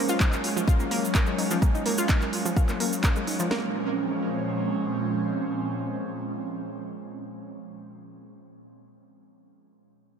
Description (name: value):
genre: progressive house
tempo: 127 BPM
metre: 4/4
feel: straight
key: Bb minor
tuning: A4 = 440 Hz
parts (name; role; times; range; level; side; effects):
- airy breathy pad; sustained chords; 0.0-7.7 s; Bb2 to Db4; -29 LUFS; right 2 dB; chorus, phaser, sidechain pumping
- analog pluck; arpeggios; 0.0-3.7 s; F3 to Bb4; -31 LUFS; left 1 dB; chorus, sidechain pumping, diffuse ambient delay
- drifting glass-harmonics texture; texture; 0.0-3.5 s; Db4; -40 LUFS; left 2 dB; none
- cabasa; percussion; 0.1-3.5 s; none; -35 LUFS; right 3 dB; none
- deep house drum kit; drums; 0.2-3.4 s; handclaps, hi-hat; -32 LUFS; equal; sidechain pumping on hats
- house drum kit; drums; 0.2-3.6 s; kick drum, snare drum; -23 LUFS; equal; none
room: wet cathedral reverb, RT60 5.9 s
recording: dreamy mix soaked in reverb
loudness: -24 LUFS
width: side -7 dB against mid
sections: 0.0-3.5 A section; 3.5-7.3 B section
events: filter sweep on synth pluck 0.0-3.5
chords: 0.0 Ab7sus4; 3.5 Bbm7